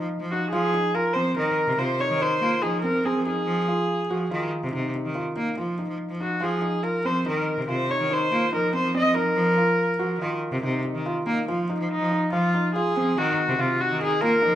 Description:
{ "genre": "contemporary instrumental, chamber music in an uneven meter", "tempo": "142 BPM", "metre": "7/4", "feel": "straight", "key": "F phrygian", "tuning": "A4 = 439 Hz", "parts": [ { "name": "felt-muted upright piano", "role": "arpeggios", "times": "0.0-14.6 s", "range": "C4 to Gb4", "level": "-29 LUFS", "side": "right 1 dB", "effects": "none" }, { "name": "bright cello", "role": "bass", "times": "0.0-14.6 s", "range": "C3 to Bb3", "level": "-27 LUFS", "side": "equal", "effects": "none" }, { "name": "rich viola", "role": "melody", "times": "0.3-14.6 s", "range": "Eb4 to Eb5", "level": "-23 LUFS", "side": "equal", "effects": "none" } ], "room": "moderate recital hall reverb, RT60 1.6 s", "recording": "minimal, uncompressed stereo recording", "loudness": "-22 LUFS", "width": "side -12 dB against mid", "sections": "0.0-14.6 A section", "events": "none", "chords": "0.0 Fm7", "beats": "0.10 | 0.52 0.94 1.36 1.78 2.21 2.62 3.05 | 3.47 3.89 4.31 4.73 5.15 5.57 5.99 | 6.41 6.83 7.26 7.68 8.10 8.52 8.94 | 9.36 9.79 10.21 10.63 11.05 11.47 11.89 | 12.31 12.74 13.16 13.58 14.00 14.42" }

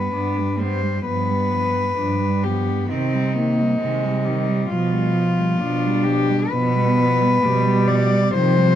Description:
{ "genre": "classical, lyrical piece for cello ensemble", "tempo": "66 BPM", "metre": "4/4", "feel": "rubato", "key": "unclear", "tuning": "A4 = 441 Hz", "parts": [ { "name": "warm cello", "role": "melody", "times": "0.0-8.8 s", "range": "Eb4 to D5", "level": "-23 LUFS", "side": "left 4 dB", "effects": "none" }, { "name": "warm cello", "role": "second line", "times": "0.0-8.8 s", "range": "Eb3 to B3", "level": "-26 LUFS", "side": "right 9 dB", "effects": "none" }, { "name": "warm cello", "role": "accompaniment", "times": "0.0-8.8 s", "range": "F3 to D4", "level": "-22 LUFS", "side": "left 2 dB", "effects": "none" }, { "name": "dark cello", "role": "bass", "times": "0.1-8.8 s", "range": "G2 to C3", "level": "-22 LUFS", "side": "right 2 dB", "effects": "none" } ], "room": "moderate stone room reverb, RT60 1.2 s", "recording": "dark, warm production", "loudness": "-17 LUFS", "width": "side -10 dB against mid", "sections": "0.0-8.8 A section", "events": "none", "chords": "0.0 G; 2.9 Cm; 4.7 G7/B", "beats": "0.13 | 1.05 1.98 2.91 3.81 | 4.70 5.61 6.52 7.44 | 8.34" }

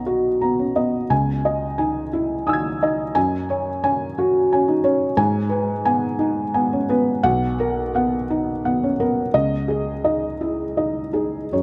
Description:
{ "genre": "neoclassical minimalist piano", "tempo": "53-60 BPM (dotted quarters)", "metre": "6/8", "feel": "rubato", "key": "C# dorian", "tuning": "A4 = 441 Hz", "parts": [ { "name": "felt-muted upright piano", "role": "solo", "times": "0.0-11.6 s", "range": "B1 to G#6", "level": "-21 LUFS", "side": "equal", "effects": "tape echo" } ], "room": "light reverb", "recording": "close, detailed microphones", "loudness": "-21 LUFS", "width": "mono", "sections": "0.0-11.6 A section", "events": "none", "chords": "0.0 Bmaj7; 1.1 C#madd9; 3.2 F#sus2; 5.2 G#m; 7.2 Bmaj7; 9.3 C#madd9", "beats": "0.07 | 1.11 2.14 | 3.16 4.17 | 5.18 6.21 | 7.25 8.29 | 9.34 10.41 | 11.52" }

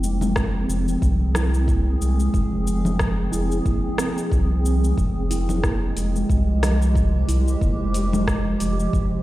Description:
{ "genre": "organic downtempo", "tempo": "91 BPM", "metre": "4/4", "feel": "swing 56% on 16ths", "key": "F harmonic minor", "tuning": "A4 = 439 Hz", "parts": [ { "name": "granular cloud pad", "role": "sustained chords", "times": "0.0-9.2 s", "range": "F3 to Ab4", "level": "-29 LUFS", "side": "right 2 dB", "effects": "built-in reverb, sidechain pumping" }, { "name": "steel tongue drum", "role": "arpeggios", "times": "0.0-9.2 s", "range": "C3 to E4", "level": "-26 LUFS", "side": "right 1 dB", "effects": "vintage 12-bit sampler grit, tape echo" }, { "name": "round analog bass", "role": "bass", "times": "0.0-8.9 s", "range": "F1 to C2", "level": "-22 LUFS", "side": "equal", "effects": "tube saturation" }, { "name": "afro-pop drum kit", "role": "drums", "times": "0.0-9.1 s", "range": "congas, hi-hat, rim click, shaker", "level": "-28 LUFS", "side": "left 1 dB", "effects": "none" }, { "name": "electronic kick drum", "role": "drums", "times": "0.4-9.1 s", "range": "none", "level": "-23 LUFS", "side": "equal", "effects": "none" } ], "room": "light reverb", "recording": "played on a big sound system in a bare room, stone room reverb", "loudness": "-19 LUFS", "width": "side -16 dB against mid", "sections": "0.0-9.2 A section", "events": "none", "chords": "0.0 Fmmaj7; 5.0 Fmadd9", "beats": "0.36 1.02 1.68 | 2.34 3.00 3.66 4.32 | 4.98 5.63 6.29 6.95 | 7.61 8.27 8.93" }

